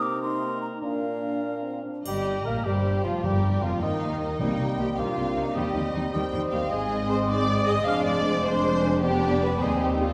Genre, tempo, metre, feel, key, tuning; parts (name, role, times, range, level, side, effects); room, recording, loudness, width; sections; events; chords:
classical, dramatic, fast romantic movement for symphony orchestra; 103 BPM (dotted quarters); 6/8; straight; Eb major; A4 = 437 Hz
dark clarinet; second line; 0.0-10.1 s; Bb3 to Bb4; -36 LUFS; equal
mellow cor anglais; second line; 0.0-10.1 s; Eb4 to Eb5; -38 LUFS; equal
mellow hollow concert flute; second line; 0.0-10.1 s; C5 to F6; -36 LUFS; equal
clear bassoon; accompaniment; 0.0-10.1 s; Bb2 to Bb3; -35 LUFS; equal
warm French horn section; sustained chords; 0.0-10.1 s; Eb3 to Ab4; -35 LUFS; equal
warm symphonic violin section; melody; 2.0-10.1 s; Bb4 to G5; -39 LUFS; equal
warm symphonic violin section; second line; 2.1-10.1 s; C4 to F5; -33 LUFS; equal
warm symphonic viola section; accompaniment; 2.1-10.1 s; Eb3 to Eb4; -36 LUFS; equal
rich symphonic double bass section; bass; 2.1-10.1 s; F1 to Eb2; -33 LUFS; equal
warm symphonic cello section; bass; 2.1-10.1 s; Eb2 to Eb3; -34 LUFS; equal
triangle; percussion; 2.1-2.8 s; -49 LUFS; equal
timpani; percussion; 3.2-4.9 s; G2 to C3; -36 LUFS; equal
wet scoring stage reverb, RT60 1.9 s; heard from further back in the room; -26 LUFS; mono
0.0-2.1 A section; 2.1-10.1 B section
0.0 Cm7; 0.8 Bb; 2.1 Eb/G; 3.2 Eb; 4.4 Cm7; 5.6 Cm/Eb; 6.7 Ab; 7.9 Dm7b5/F; 9.0 G7/F; 9.6 Cm/Eb